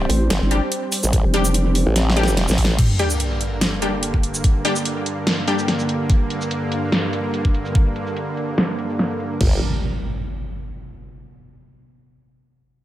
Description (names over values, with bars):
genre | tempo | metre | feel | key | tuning
heavy wobble dubstep | 145 BPM | 4/4 | swing 54% on 16ths, half-time | G minor | A4 = 441 Hz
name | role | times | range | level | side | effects
supersaw pad | sustained chords | 0.0-9.6 s | G2 to C5 | -25 LUFS | right 1 dB | sidechain pumping, low-pass filter
formant-sweep wobble bass | bass | 0.0-2.8, 9.4-9.6 s | G1 to A1 | -19 LUFS | equal | chorus, overdrive
vowel-sweep wobble bass | bass | 0.1-1.8 s | F1 to A1 | -18 LUFS | equal | chorus, overdrive
dubstep drum kit | drums | 0.1-9.3 s | crash cymbal, hi-hat, shaker, snare drum | -22 LUFS | equal | low-pass filter on hats, studio reverb, low-pass filter on perc, low-pass filter on snare, low-pass filter on cymbals
orchestra-hit-like synth stab | stabs | 0.5-6.3 s | G3 to G4 | -25 LUFS | left 2 dB | built-in reverb, dub echo
dubstep drum kit | drums | 1.1-9.5 s | crash cymbal, kick drum | -18 LUFS | equal | overdrive, studio reverb
sub drop and impact | sound effects | 2.8-4.4, 9.4-11.1 s | none | -24 LUFS | equal | none
room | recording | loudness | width
light reverb, digital ambience | none | -18 LUFS | side -13 dB against mid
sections
0.0-2.8 A section; 2.8-9.4 B section; 9.4-11.1 C section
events
drop 0.0-2.8; drum fill 2.0-2.8; impact 2.8-4.4; filter sweep on drum 2.8-9.4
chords
0.0 G5; 2.8 Gm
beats
0.30 0.72 | 1.13 1.54 1.96 2.37 | 2.79 3.20 3.61 4.03 | 4.44 4.86 5.27 5.68 | 6.10 6.51 6.92 7.34 | 7.75 8.16 8.58 8.99 | 9.41 9.82 10.23 10.65